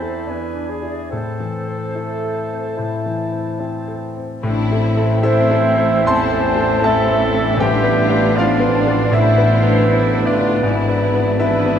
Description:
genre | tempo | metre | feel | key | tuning
classical, romantic movement for piano and orchestra | 70-81 BPM | 4/4 | rubato | A minor | A4 = 440 Hz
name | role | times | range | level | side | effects
clear grand piano | melody | 0.0-11.8 s | E2 to C6 | -18 LUFS | left 2 dB | none
clear clarinet | second line | 0.0-11.8 s | E4 to E5 | -28 LUFS | right 1 dB | none
clear oboe | second line | 0.0-11.8 s | D4 to A5 | -27 LUFS | right 1 dB | none
small flute group | second line | 0.0-11.8 s | B4 to A5 | -26 LUFS | equal | none
mellow bassoon | accompaniment | 0.0-11.8 s | A3 to E4 | -27 LUFS | right 3 dB | none
rich studio violin section | melody | 4.4-11.8 s | C4 to F4 | -28 LUFS | left 3 dB | none
warm studio violin section | second line | 4.4-11.8 s | C4 to F4 | -28 LUFS | left 3 dB | none
warm trombone section | sustained chords | 4.4-11.8 s | A2 to D4 | -28 LUFS | right 5 dB | none
warm studio cello section | bass | 4.4-11.8 s | G#2 to A2 | -26 LUFS | right 3 dB | none
warm studio viola section | accompaniment | 4.5-11.8 s | A3 to D4 | -29 LUFS | right 1 dB | none
mellow tuba | bass | 4.5-11.8 s | G#1 to A1 | -26 LUFS | right 3 dB | none
rich studio double bass section | bass | 4.5-11.8 s | G#1 to A1 | -24 LUFS | right 1 dB | none
mellow French horn section | sustained chords | 5.2-11.8 s | D3 to C4 | -25 LUFS | equal | none
timpani | percussion | 7.6-8.7 s | A2 | -30 LUFS | left 3 dB | none
room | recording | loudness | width
wet concert hall reverb, RT60 1.8 s | minimal, uncompressed stereo recording | -15 LUFS | side -8 dB against mid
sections
0.0-4.5 A section; 4.5-11.8 A section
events
none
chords
0.3 E7; 1.1 Am; 7.6 Bm7b5/A; 10.6 E7/G#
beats
0.29 | 1.12 1.97 2.80 3.62 | 4.45 5.24 6.06 6.84 | 7.59 8.36 9.13 9.89 | 10.64 11.39

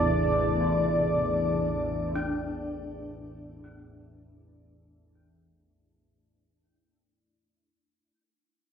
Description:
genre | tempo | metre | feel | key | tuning
dark ambient drone | free time | none | none | A minor | A4 = 440 Hz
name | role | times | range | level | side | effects
deep dark ambient pad | sustained chords | 0.0-6.0 s | A3 to A5 | -27 LUFS | equal | chorus, built-in reverb, shimmer reverb
gamelan-type bronze metallophone | arpeggios | 0.0-8.1 s | C3 to D4 | -37 LUFS | left 1 dB | analog delay
organ-like drone | drone | 0.0-6.1 s | A1 to E2 | -31 LUFS | left 1 dB | ensemble chorus, built-in reverb
room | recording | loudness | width
wet plate reverb, RT60 2.7 s | dreamy mix soaked in reverb | -25 LUFS | side -7 dB against mid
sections
0.0-6.0 A section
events
fade-out 0.0-6.0; filter sweep on synth drone 0.0-6.0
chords
0.0 A5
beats
free time

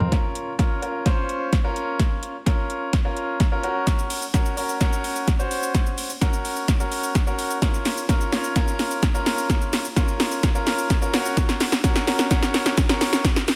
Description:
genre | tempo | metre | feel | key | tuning
dance-pop | 128 BPM | 4/4 | straight | Bb minor | A4 = 440 Hz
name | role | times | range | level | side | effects
clear concert grand piano | accompaniment | 0.0-13.2 s | C4 to C5 | -28 LUFS | equal | sidechain pumping
deep house drum kit | drums | 0.0-13.6 s | hi-hat, kick drum, shaker, snare drum, toms | -23 LUFS | equal | overdrive
room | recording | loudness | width
light reverb | none | -23 LUFS | mono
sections
0.1-13.6 A section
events
build-up 0.1-13.6; drum fill 0.1-13.6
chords
0.1 Bbm; 3.6 Gb; 7.6 Bbm; 11.1 Gb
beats
| 0.12 0.59 1.06 1.53 | 2.00 2.46 2.93 3.40 | 3.87 4.34 4.81 5.28 | 5.75 6.21 6.68 7.15 | 7.62 8.09 8.56 9.03 | 9.50 9.96 10.43 10.90 | 11.37 11.84 12.31 12.78 | 13.25

